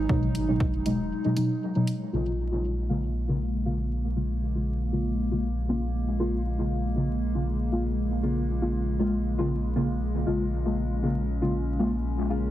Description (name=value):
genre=dub techno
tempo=118 BPM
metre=4/4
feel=swing 54% on 16ths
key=Bb minor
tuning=A4 = 442 Hz
part: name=warbly tape-like pad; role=sustained chords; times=0.0-12.5 s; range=Db3 to Eb4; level=-33 LUFS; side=left 1 dB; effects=chorus, built-in reverb, phaser, sidechain pumping
part: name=warm sub bass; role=bass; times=0.0-12.5 s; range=Eb1 to Bb1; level=-29 LUFS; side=equal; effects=tube saturation, sidechain pumping
part: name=deep mellow chord stab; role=stabs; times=0.1-12.5 s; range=Cb3 to F4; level=-28 LUFS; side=equal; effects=chorus, phaser, cassette tape, dub echo
part: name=electronic kick drum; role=drums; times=0.1-0.7 s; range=none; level=-27 LUFS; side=equal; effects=small room ambience
part: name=electronic hi-hat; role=drums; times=0.3-2.0 s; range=none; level=-41 LUFS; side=equal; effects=small room ambience, dub echo
room=light reverb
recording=heavily compressed radio sound, multiband compression, vinyl crackle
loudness=-25 LUFS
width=side -13 dB against mid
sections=0.0-2.1 A section; 2.1-12.5 B section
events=filter sweep on synth stab 0.0-2.1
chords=0.0 Abm7; 2.1 Bbm7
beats=| 0.10 0.60 1.11 1.62 | 2.13 2.64 3.15 3.65 | 4.16 4.67 5.18 5.69 | 6.20 6.71 7.21 7.72 | 8.23 8.74 9.25 9.76 | 10.26 10.77 11.28 11.79 | 12.30